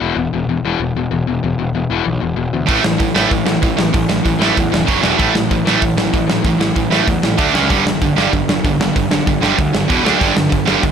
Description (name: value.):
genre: punk rock.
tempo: 191 BPM.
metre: 4/4.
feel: straight.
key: A mixolydian.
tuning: A4 = 440 Hz.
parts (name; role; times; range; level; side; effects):
distorted electric guitar; riff; 0.0-10.9 s; E2 to D4; -19 LUFS; left 9 dB; distortion.
fuzz picked electric bass; bass; 0.0-10.9 s; E1 to E2; -22 LUFS; equal; overdrive.
distorted electric guitar; riff; 2.7-10.9 s; E2 to D4; -16 LUFS; right 12 dB; overdrive.
big rock drum kit; drums; 2.7-10.9 s; hi-hat, kick drum, snare drum; -18 LUFS; equal; none.
room: light reverb.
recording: none.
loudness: -13 LUFS.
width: side -7 dB against mid.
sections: 0.0-10.9 A section.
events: none.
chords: 0.0 E5; 2.7 A5; 4.9 F#5; 5.0 E5; 5.2 A5; 7.4 D5; 7.5 C#5; 7.7 G5; 9.9 E5; 10.0 D5; 10.2 G5.